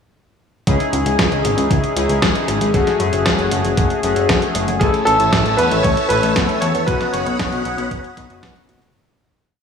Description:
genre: italo disco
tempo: 116 BPM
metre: 4/4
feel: straight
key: C# minor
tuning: A4 = 438 Hz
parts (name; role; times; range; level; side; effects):
- analog synth brass; stabs; 0.7-8.9 s; A3 to A4; -20 LUFS; left 4 dB; chorus, vintage 12-bit sampler grit, digital delay
- fat analog bass; bass; 0.7-8.9 s; F#1 to F#2; -21 LUFS; equal; digital delay
- clean 12-bit digital drum machine; drums; 0.7-8.9 s; hi-hat, snare drum; -22 LUFS; equal; gated reverb
- electronic kick drum; drums; 0.7-8.5 s; none; -21 LUFS; right 1 dB; none
- clear concert grand piano; melody; 4.8-7.9 s; G#4 to C#5; -18 LUFS; right 1 dB; digital delay
- string machine, full ensemble; sustained chords; 4.8-8.9 s; C#5 to E6; -24 LUFS; equal; phaser, ensemble chorus
room: moderate lush hall reverb, RT60 2.3 s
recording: small room ambience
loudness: -14 LUFS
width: side -6 dB against mid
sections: 0.7-8.9 verse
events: fade-out 6.2-8.9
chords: 0.7 C#madd9; 2.7 F#madd9; 4.8 A; 6.9 Badd9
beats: | 0.67 1.19 1.71 2.22 | 2.74 3.26 3.77 4.29 | 4.81 5.33 5.84 6.36 | 6.88 7.39 7.91 8.43

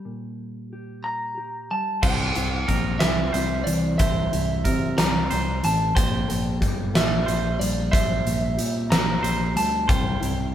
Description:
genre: post-rock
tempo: 61 BPM (dotted quarters)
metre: 6/8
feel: straight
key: unclear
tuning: A4 = 439 Hz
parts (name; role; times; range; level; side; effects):
- mellow electric guitar; arpeggios; 0.0-10.5 s; Bb2 to A4; -31 LUFS; left 1 dB; none
- electric guitar through a small old amp; melody; 1.0-10.5 s; D5 to Bb5; -28 LUFS; right 1 dB; none
- twangy electric guitar; arpeggios; 2.0-10.5 s; Bb4 to C5; -32 LUFS; right 3 dB; none
- overdriven fingered electric bass; bass; 2.0-10.5 s; G1 to C3; -26 LUFS; equal; none
- huge arena drum kit; drums; 2.0-10.4 s; crash cymbal, hi-hat, kick drum, snare drum; -24 LUFS; equal; none
room: light reverb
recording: band playing live in one room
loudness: -20 LUFS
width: side -10 dB against mid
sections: 0.0-2.0 A section; 2.0-10.5 B section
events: none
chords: 0.0 Gmadd9/Bb; 2.0 C; 6.0 Gmadd9; 9.9 C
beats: | 0.06 1.04 | 2.03 3.01 | 4.00 4.98 | 5.96 6.95 | 7.93 8.91 | 9.89

